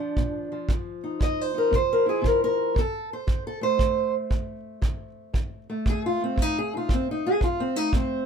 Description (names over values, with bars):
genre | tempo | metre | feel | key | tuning
acoustic country blues, solo or duo | 116 BPM | 4/4 | swing 66% on 8ths | F mixolydian | A4 = 440 Hz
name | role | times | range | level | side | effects
fingerpicked steel-string acoustic guitar | melody | 0.0-8.3 s | F2 to Eb5 | -24 LUFS | equal | none
kick drum | drums | 0.2-8.1 s | none | -25 LUFS | right 1 dB | none
room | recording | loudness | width
light reverb | minimal, uncompressed stereo recording | -23 LUFS | side -7 dB against mid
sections
0.0-2.8 A section; 2.8-8.3 B section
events
steel-string acoustic guitar solo 2.8-8.3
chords
0.0 Bb; 0.7 F7(no3); 1.7 C; 2.8 F